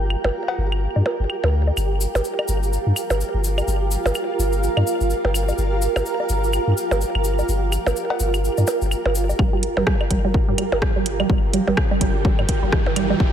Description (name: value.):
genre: minimal techno.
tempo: 126 BPM.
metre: 4/4.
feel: swing 59% on 16ths.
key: G minor.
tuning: A4 = 440 Hz.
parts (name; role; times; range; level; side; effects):
punchy sub bass; bass; 0.0-13.3 s; G1 to G2; -22 LUFS; left 1 dB; sidechain pumping.
flickering grainy texture; texture; 0.0-13.3 s; G4; -31 LUFS; right 2 dB; built-in reverb, sidechain pumping.
granular cloud pad; texture; 0.0-13.3 s; F4 to G5; -25 LUFS; right 3 dB; built-in reverb, sidechain pumping.
claves, percussion blips, cowbell and woodblock; percussion; 0.1-13.2 s; none; -26 LUFS; right 1 dB; ping-pong delay.
cabasa; percussion; 1.8-9.4 s; none; -32 LUFS; left 5 dB; none.
resonant blip pluck; riff; 9.4-13.1 s; G3; -24 LUFS; right 4 dB; phaser, cassette tape, sidechain pumping, dub echo.
electronic kick drum; drums; 9.4-13.3 s; none; -20 LUFS; left 1 dB; none.
riser; sound effects; 11.0-13.3 s; none; -31 LUFS; equal; none.
house drum kit; drums; 9.6-13.1 s; hi-hat, rim click; -27 LUFS; equal; high-pass filter on hats, high-pass filter on snare.
room: light reverb, digital ambience.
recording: none.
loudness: -18 LUFS.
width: side -9 dB against mid.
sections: 0.0-9.4 A section; 9.4-13.3 B section.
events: build-up 9.4-13.3; filter sweep on synth arpeggio sound 9.4-13.3; riser 11.0-13.3.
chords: 0.0 Gm7.